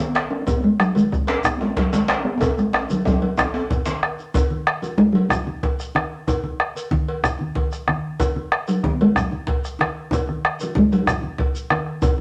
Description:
west african traditional, West African drum ensemble; 125 BPM (dotted quarters); 12/8; straight; E major pentatonic; A4 = 440 Hz
talking drum; melody; 0.0-11.7 s; E3 to C#4; -22 LUFS; equal
cowbell; percussion; 0.1-12.2 s; -33 LUFS; equal
djembe; percussion; 0.1-12.2 s; -32 LUFS; equal
bombo; percussion; 0.2-12.2 s; -25 LUFS; equal
djembe; percussion; 0.2-4.0 s; -27 LUFS; equal
congas; percussion; 0.5-12.2 s; -31 LUFS; equal
shekere; percussion; 0.5-12.2 s; -39 LUFS; equal
wet studio reverb, RT60 0.8 s; -21 LUFS; mono
0.0-4.3 A section; 4.3-12.2 B section
drum fill 2.4-4.3

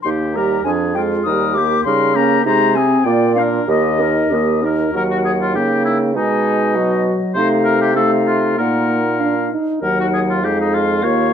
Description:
quick classical-period movement for wind quintet; 99 BPM; 2/4; straight; Eb major, Eb minor from 4.9 s; A4 = 441 Hz
concert flute; melody; 0.0-11.3 s; Eb5 to Eb6; -21 LUFS; left 9 dB
clear clarinet; accompaniment; 0.0-11.3 s; C4 to Bb4; -23 LUFS; right 6 dB
warm oboe; second line; 0.1-11.3 s; Eb4 to Eb5; -22 LUFS; left 3 dB
mellow French horn; accompaniment; 0.1-11.3 s; F3 to Eb4; -20 LUFS; equal
mellow bassoon; bass; 0.1-11.3 s; Eb2 to Db3; -19 LUFS; right 3 dB
moderate large studio reverb, RT60 1.3 s; dark, warm production; -14 LUFS; side -8 dB against mid
0.0-4.9 A section; 4.9-11.3 B section
0.0 Eb; 0.7 Ddim/F; 1.3 Eb; 1.9 Eb7/Db; 2.5 Ab/C; 3.1 Bb; 3.7 Eb; 4.9 Ebm; 5.6 Eb7/Db; 6.2 Abm/Cb; 7.4 F7/C; 8.6 Ebm/Bb; 9.2 Bb; 9.8 Ebm; 10.4 Fm9

